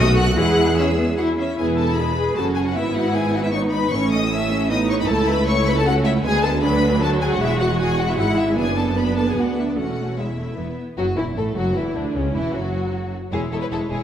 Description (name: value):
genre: quick classical-period movement for string orchestra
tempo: 154 BPM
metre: 3/4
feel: straight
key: E major, A major from 6.2 s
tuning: A4 = 440 Hz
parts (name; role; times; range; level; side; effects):
- clear chamber violin section; melody; 0.0-14.0 s; C#4 to F#6; -27 LUFS; left 4 dB; none
- rich studio violin section; second line; 0.0-14.0 s; C#4 to F#5; -26 LUFS; left 2 dB; none
- rich studio viola section; accompaniment; 0.0-14.0 s; C#3 to G#4; -22 LUFS; right 1 dB; none
- rich chamber double bass section; bass; 0.0-14.0 s; E1 to E2; -24 LUFS; right 1 dB; none
- rich studio cello section; bass; 0.0-14.0 s; C#2 to G#4; -26 LUFS; right 2 dB; none
room: wet scoring stage reverb, RT60 1.6 s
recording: none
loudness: -18 LUFS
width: side -9 dB against mid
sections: 0.0-1.6 A section; 1.6-11.0 B section; 11.0-14.0 C section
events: none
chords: 0.0 B7; 0.4 E; 2.8 E/G#; 3.9 A; 5.1 A/C#; 6.2 Bm/D; 7.4 E; 8.6 D/F#; 9.8 Esus4; 10.6 E5; 11.0 A5; 12.2 F#5; 13.3 C#m/E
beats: | 0.38 0.78 1.18 | 1.58 1.98 2.37 | 2.76 3.15 3.54 | 3.92 4.31 4.70 | 5.09 5.47 5.86 | 6.25 6.63 7.02 | 7.41 7.80 8.19 | 8.57 8.97 9.37 | 9.77 10.17 10.58 | 10.98 11.37 11.76 | 12.16 12.55 12.93 | 13.32 13.71